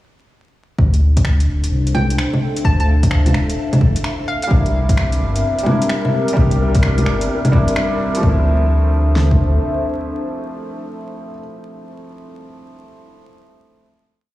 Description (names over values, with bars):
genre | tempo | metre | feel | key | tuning
future garage | 129 BPM | 4/4 | swing 65% on 16ths | D minor | A4 = 440 Hz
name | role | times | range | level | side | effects
dark analog pad | sustained chords | 1.3-11.5 s | C4 to F5 | -24 LUFS | left 1 dB | chorus, sidechain pumping
dark detuned saw bass | bass | 0.8-9.6 s | D1 to D2 | -15 LUFS | equal | sidechain pumping
deep house drum kit | drums | 0.8-9.4 s | kick drum, snare drum | -17 LUFS | equal | overdrive
deep house drum kit | drums | 0.9-8.2 s | bongos, finger snaps, hi-hat | -21 LUFS | left 1 dB | overdrive
hollow square pluck | melody | 1.9-4.5 s | F5 to A5 | -27 LUFS | right 1 dB | chorus, tape echo
felt-muted upright piano | accompaniment | 4.5-14.3 s | F3 to G4 | -23 LUFS | equal | sidechain pumping, dub echo
wind-like tuned noise texture | texture | 5.2-8.2 s | Bb4 | -30 LUFS | left 2 dB | built-in reverb
room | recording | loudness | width
light reverb, digital ambience | played on a big sound system in a bare room, large studio reverb, vinyl crackle, small room ambience | -14 LUFS | side -16 dB against mid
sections
0.8-8.2 groove; 8.2-11.9 final chord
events
none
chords
0.8 Dm7; 4.5 C7; 8.2 Dm7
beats
| 0.79 1.25 1.72 2.18 | 2.65 3.11 3.58 4.04 | 4.51 4.97 5.44 5.90 | 6.37 6.83 7.30 7.76 | 8.23 8.69 9.16 9.62 | 10.09 10.55 11.02 11.48